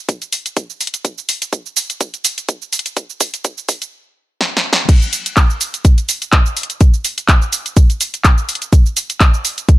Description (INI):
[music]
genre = house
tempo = 125 BPM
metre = 4/4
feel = swing 55% on 16ths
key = none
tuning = none
[part]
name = electronic kick drum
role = drums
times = 0.1-9.8 s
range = none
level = -10 LUFS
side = equal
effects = high-pass filter on kick
[part]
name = house drum kit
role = drums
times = 0.1-9.8 s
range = crash cymbal, handclaps, hi-hat, shaker, snare drum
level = -16 LUFS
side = right 1 dB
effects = none
[sound]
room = little or no reverb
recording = high-pass filter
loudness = -13 LUFS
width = side -16 dB against mid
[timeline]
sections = 0.0-4.9 A section; 4.9-9.8 B section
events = build-up 0.0-4.9; drum fill 1.0-3.9, 4.4-4.9; drop 4.9-9.8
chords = none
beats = 0.09 0.57 | 1.05 1.53 2.01 2.49 | 2.97 3.45 3.93 4.41 | 4.89 5.37 5.85 6.33 | 6.81 7.29 7.77 8.25 | 8.73 9.21 9.69